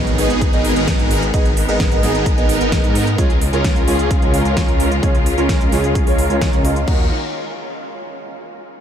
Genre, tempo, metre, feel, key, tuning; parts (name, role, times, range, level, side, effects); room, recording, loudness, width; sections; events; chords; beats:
EDM, festival progressive house; 130 BPM; 4/4; straight; A4 = 439 Hz
dark grand piano; accompaniment; 0.0-7.1 s; Ab3 to Eb5; -23 LUFS; right 2 dB; sidechain pumping, tape echo
clear studio string section; sustained chords; 0.0-7.1 s; Db3 to Bb4; -26 LUFS; left 2 dB; sidechain pumping
supersaw chords; riff; 0.0-7.0 s; Cb4 to Bb4; -21 LUFS; right 1 dB; phaser, sidechain pumping, low-pass filter, tape echo
detuned saw bass; bass; 0.0-7.1 s; Ab1 to Ab2; -21 LUFS; equal; sidechain pumping
impact; sound effects; 0.0-1.3 s; -32 LUFS; equal
big-room dance drum kit; drums; 0.1-7.0 s; crash cymbal, hi-hat, snare drum; -27 LUFS; equal
electronic kick drum; drums; 0.4-7.0 s; -17 LUFS; equal
light reverb, digital ambience; -14 LUFS; side -9 dB against mid
0.0-6.9 A section; 6.9-8.7 B section
impact 0.0-1.3; filter sweep on supersaw synth 0.0-6.9
0.0 Abm; 3.2 Db; 6.9 Ebm
0.41 0.88 | 1.34 1.80 2.26 2.72 | 3.18 3.65 4.11 4.57 | 5.03 5.49 5.95 6.42 | 6.88